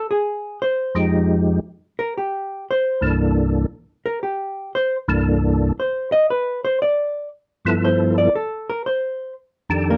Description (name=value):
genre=jazz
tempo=116 BPM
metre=4/4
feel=swing 69% on 8ths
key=C mixolydian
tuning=A4 = 440 Hz
part: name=hollow-body jazz guitar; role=accompaniment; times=0.0-10.0 s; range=Bb3 to Eb5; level=-22 LUFS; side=equal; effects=none
part: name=percussive tonewheel organ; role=melody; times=0.9-10.0 s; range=C2 to A4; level=-19 LUFS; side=equal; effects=slow rotary speaker, chorus vibrato
room=light reverb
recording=dry, close 1970s-style studio recording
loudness=-21 LUFS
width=mono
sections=0.0-10.0 A section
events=hollow-body jazz guitar solo 0.0-10.0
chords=0.1 Fm7; 2.1 C13; 6.3 G13; 8.3 F13